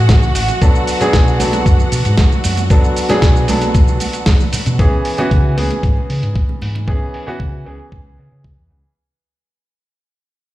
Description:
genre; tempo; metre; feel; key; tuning
nu-disco, nu disco; 115 BPM; 4/4; straight; unclear; A4 = 440 Hz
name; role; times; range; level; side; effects
clear grand piano; accompaniment; 0.0-8.9 s; E3 to A4; -19 LUFS; equal; sidechain pumping, low-pass filter, ping-pong delay
rich studio string section; sustained chords; 0.0-4.8 s; F#4 to F#5; -23 LUFS; right 1 dB; sidechain pumping
overdriven fingered electric bass; bass; 0.0-8.8 s; A1 to C#3; -17 LUFS; equal; none
dusty soul sampler-style drum kit; drums; 0.1-8.9 s; cabasa, hi-hat, snare drum; -22 LUFS; equal; low-pass filter on perc, low-pass filter on hats, low-pass filter on snare
electronic kick drum; drums; 0.1-8.5 s; none; -12 LUFS; equal; none
congas; percussion; 0.2-6.9 s; none; -26 LUFS; right 4 dB; none
room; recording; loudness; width
little or no reverb; played on a big sound system in a bare room, stone room reverb; -12 LUFS; side -16 dB against mid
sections
0.0-4.8 A section; 4.8-9.0 B section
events
fade-out 4.8-9.0; filter sweep on grand piano 4.8-9.0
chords
0.0 Amaj7; 0.6 Bm7; 4.8 C#m7

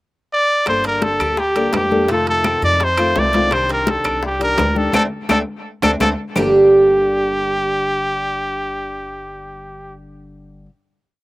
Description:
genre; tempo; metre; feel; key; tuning
latin, Cuban son and guajira; 169 BPM; 4/4; straight; G minor; A4 = 439 Hz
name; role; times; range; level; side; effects
bright trumpet; melody; 0.3-9.9 s; G4 to D5; -18 LUFS; equal; slapback echo
nylon-string guitar; accompaniment; 0.7-10.7 s; G2 to A4; -24 LUFS; left 3 dB; none
upright bass; bass; 0.7-10.7 s; G1 to F2; -28 LUFS; equal; none
bongos; percussion; 0.7-6.4 s; none; -28 LUFS; left 5 dB; none
claves; percussion; 0.7-6.4 s; none; -26 LUFS; left 2 dB; none
congas; percussion; 0.7-6.4 s; none; -24 LUFS; left 2 dB; none
timbales; percussion; 0.7-6.4 s; none; -27 LUFS; right 4 dB; slapback echo
Cuban tres; arpeggios; 0.8-10.7 s; G3 to Bb4; -18 LUFS; right 2 dB; none
room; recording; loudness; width
light reverb; recorded outdoors, with no room sound; -14 LUFS; side -18 dB against mid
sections
0.0-0.7 pickup bar; 0.7-6.4 verse; 6.4-9.2 final chord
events
band accent 4.9-6.4; drum fill 5.3-6.4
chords
0.0 N.C.; 0.7 Gmadd9; 2.1 F7; 3.5 Cmadd9; 4.9 D5; 6.4 Gmadd9

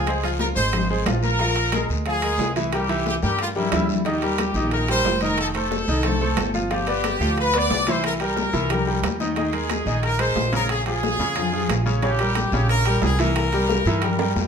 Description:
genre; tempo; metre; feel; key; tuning
latin, salsa; 181 BPM; 4/4; straight; unclear; A4 = 440 Hz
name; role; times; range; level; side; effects
brilliant trumpet section; melody; 0.0-14.4 s; E4 to D5; -24 LUFS; left 1 dB; none
bright grand piano; accompaniment; 0.0-14.5 s; Db3 to F5; -25 LUFS; equal; none
upright bass; bass; 0.0-14.5 s; F1 to G2; -25 LUFS; right 1 dB; none
bongos; percussion; 0.1-14.5 s; none; -34 LUFS; left 6 dB; none
congas; percussion; 0.1-14.5 s; none; -30 LUFS; left 5 dB; none
guiro; percussion; 0.1-14.5 s; none; -36 LUFS; left 7 dB; none
timbales; percussion; 0.1-14.3 s; none; -30 LUFS; right 8 dB; none
room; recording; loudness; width
moderate large studio reverb, RT60 0.9 s; minimal, uncompressed stereo recording; -19 LUFS; side -6 dB against mid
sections
0.0-4.1 A section; 4.1-14.5 B section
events
drum fill 3.1-4.1, 8.9-9.4, 14.2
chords
0.1 Dbmaj7; 1.4 Bb7; 2.7 C7; 4.1 Eb; 5.4 F7; 6.7 G7; 8.0 C7; 9.4 Eb7sus4; 10.7 Bbm7; 12.0 Gdim/Bb; 13.4 C7

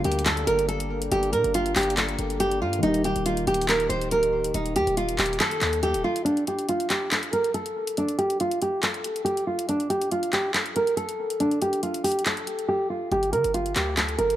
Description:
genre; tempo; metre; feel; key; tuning
hip hop, trap; 140 BPM; 4/4; half-time; unclear; A4 = 439 Hz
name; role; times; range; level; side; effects
nylon-string guitar; melody; 0.0-14.4 s; D4 to C5; -24 LUFS; right 1 dB; low-pass filter, tape echo
dark concert grand piano; accompaniment; 0.0-6.3 s; D3 to D5; -34 LUFS; left 2 dB; low-pass filter
dark French horn section; sustained chords; 0.0-6.2 s; Eb3 to G4; -34 LUFS; left 2 dB; none
hard-hitting 808-style bass; bass; 0.0-6.0, 13.1-14.4 s; D1 to D3; -31 LUFS; left 1 dB; none
trap drum kit; drums; 0.0-14.4 s; handclaps, hi-hat; -28 LUFS; left 1 dB; none
room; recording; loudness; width
light reverb, small room ambience; dry, gritty hardware recording; -22 LUFS; side -12 dB against mid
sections
0.0-6.3 A section; 6.3-14.4 B section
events
kick muted 6.3-13.1; drums muted 12.7-13.1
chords
0.0 Gm; 2.8 Eb; 6.3 N.C.; 13.1 Gm

